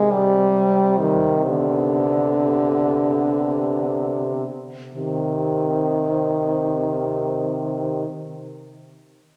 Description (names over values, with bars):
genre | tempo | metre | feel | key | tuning
classical, lyrical piece for horn quartet | 29-45 BPM (dotted quarters) | 6/8 | rubato | C minor | A4 = 440 Hz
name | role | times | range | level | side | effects
clear French horn | accompaniment | 0.0-8.1 s | D3 to Ab3 | -22 LUFS | equal | none
warm French horn | bass | 0.0-8.1 s | C3 | -29 LUFS | equal | none
mellow French horn | melody | 0.1-8.1 s | G4 | -37 LUFS | equal | none
warm French horn | second line | 0.1-8.1 s | B3 to C4 | -32 LUFS | equal | none
room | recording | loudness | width
wet concert hall reverb, RT60 2.5 s | none | -21 LUFS | mono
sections
0.0-5.0 A section; 5.0-8.5 B section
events
slowing down 0.0-5.0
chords
0.0 Cm; 1.5 G/C; 5.0 Cm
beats
0.11 | 1.46 3.05 | 4.95 6.73